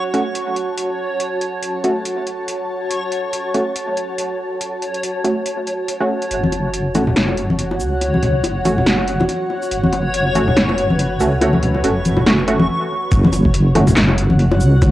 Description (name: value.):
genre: deep dubstep.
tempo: 141 BPM.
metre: 4/4.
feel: swing 58% on 16ths, half-time.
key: F# minor.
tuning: A4 = 440 Hz.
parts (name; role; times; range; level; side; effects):
granular cloud pad; sustained chords; 0.0-14.9 s; F#4 to A5; -24 LUFS; right 1 dB; built-in reverb, cassette tape.
backwards swelling texture; texture; 0.0-12.7 s; C#5; -25 LUFS; left 2 dB; built-in reverb, cassette tape.
filtered dub chord stab; stabs; 0.1-13.8 s; A3 to F#4; -21 LUFS; right 1 dB; chorus, cassette tape, dub echo.
deep house drum kit; drums; 0.1-14.9 s; handclaps, hi-hat, shaker, snare drum; -20 LUFS; equal; overdrive.
deep soft wobble bass; bass; 6.3-14.9 s; F#1 to C#2; -18 LUFS; equal; chorus.
congas and bongos; percussion; 6.4-14.9 s; none; -19 LUFS; left 1 dB; none.
electronic kick drum; drums; 13.1-14.9 s; none; -16 LUFS; equal; none.
room: light reverb, digital ambience.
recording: home recording on cassette.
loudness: -15 LUFS.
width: side -15 dB against mid.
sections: 0.0-6.3 A section; 6.3-13.1 B section; 13.1-14.9 C section.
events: build-up 6.3-13.1; stop 12.7-13.1; drop 13.1-14.9.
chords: 0.0 F#m; 13.1 F#5.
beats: 0.35 0.78 | 1.20 1.63 2.06 2.48 | 2.91 3.33 3.76 4.18 | 4.61 5.03 5.46 5.88 | 6.31 6.74 7.16 7.59 | 8.01 8.44 8.86 9.29 | 9.71 10.14 10.56 10.99 | 11.42 11.84 12.27 12.69 | 13.12 13.54 13.97 14.39 | 14.82.